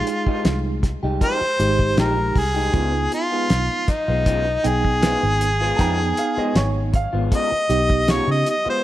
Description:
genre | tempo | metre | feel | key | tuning
straight-eighth soul blues | 79 BPM | 4/4 | straight | unclear | A4 = 440 Hz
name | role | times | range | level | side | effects
warm harmonica | melody | 0.0-8.8 s | Eb4 to Eb5 | -21 LUFS | equal | overdrive
tine electric piano | accompaniment | 0.0-8.5 s | Ab3 to G5 | -26 LUFS | right 3 dB | overdrive, medium stereo tremolo
electric guitar through a small old amp | stabs | 0.1-8.8 s | Db3 to G4 | -29 LUFS | left 3 dB | phaser
cloth-damped thuddy drum kit | drums | 0.1-8.6 s | hi-hat, kick drum, snare drum | -22 LUFS | equal | none
vintage muted fingered electric bass | bass | 0.3-8.7 s | Ab1 to Db3 | -23 LUFS | equal | none
warm upright piano | second line | 5.8-7.3 s | Db5 to Bb5 | -28 LUFS | right 3 dB | none
room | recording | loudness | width
light reverb, small room ambience | none | -17 LUFS | side -14 dB against mid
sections
0.0-8.8 A section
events
none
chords
0.0 Fm9; 2.7 Db7

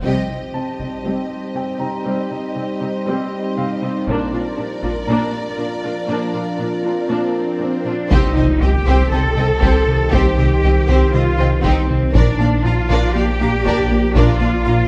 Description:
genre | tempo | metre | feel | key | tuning
cinematic, hybrid orchestral and electronic film score | 119 BPM | 4/4 | straight | C dorian | A4 = 440 Hz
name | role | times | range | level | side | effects
warm symphonic violin section | second line | 0.0-14.7 s | G4 to F5 | -30 LUFS | equal | none
rich symphonic viola section | accompaniment | 0.0-14.7 s | G3 to F4 | -27 LUFS | equal | low-pass filter
analog drone | sustained chords | 0.0-14.9 s | Eb3 to D5 | -26 LUFS | equal | chorus, low-pass filter
punchy sub bass | bass | 0.0, 8.1-14.9 s | Bb1 to C2 | -22 LUFS | equal | none
rich symphonic cello section | bass | 0.0-14.9 s | Bb2 to A4 | -25 LUFS | equal | none
taiko ensemble | drums | 0.0-1.0, 4.1-5.1, 8.1-14.6 s | none | -24 LUFS | equal | none
bright baby grand piano | texture | 0.0-14.9 s | C5 to C6 | -34 LUFS | equal | delay
swell and impact | sound effects | 6.9-10.1 s | none | -30 LUFS | equal | none
warm symphonic violin section | melody | 8.1-14.8 s | C5 to Bb5 | -31 LUFS | equal | low-pass filter
round analog bass | riff | 8.1-14.8 s | C2 to Bb3 | -22 LUFS | equal | low-pass filter
rich symphonic double bass section | bass | 8.1-14.7 s | Bb1 to C2 | -26 LUFS | equal | none
room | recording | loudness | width
moderate scoring stage reverb, RT60 1.9 s | dark, warm production | -18 LUFS | mono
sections
0.0-8.1 A section; 8.1-14.9 B section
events
band accent 0.0-0.5; filter sweep 0.0-8.1; swell 6.9-8.1; impact 8.1-10.1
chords
0.0 Cm; 4.1 Bb; 8.1 Cm; 12.1 Bb

